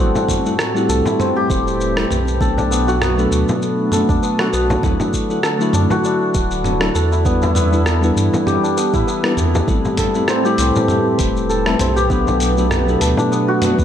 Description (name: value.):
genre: organic downtempo.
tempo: 99 BPM.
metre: 4/4.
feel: swing 55% on 16ths.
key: unclear.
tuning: A4 = 440 Hz.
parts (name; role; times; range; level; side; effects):
bell-like tine electric piano; accompaniment; 0.0-13.8 s; F#3 to B4; -22 LUFS; left 2 dB; sidechain pumping, digital delay.
warm analog pad; sustained chords; 0.0-13.8 s; A2 to D5; -23 LUFS; right 1 dB; lush chorus, sidechain pumping.
santur; arpeggios; 0.0-13.8 s; B3 to A4; -19 LUFS; left 1 dB; digital delay.
warm sub bass; bass; 0.0-13.8 s; D1 to A2; -20 LUFS; right 1 dB; sidechain pumping.
dusty soul sampler-style drum kit; drums; 0.2-13.8 s; hi-hat, rim click, shaker, toms; -23 LUFS; equal; none.
frame drum; percussion; 0.2-13.3 s; none; -24 LUFS; left 1 dB; none.
electronic kick drum; drums; 0.3-13.8 s; none; -20 LUFS; right 1 dB; none.
room: light reverb.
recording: none.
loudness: -14 LUFS.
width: side -9 dB against mid.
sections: 0.0-13.8 A section.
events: none.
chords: 0.0 Am7; 2.4 Bm7; 4.8 Dadd9; 7.3 Em7; 9.7 Am7; 12.1 Bm7.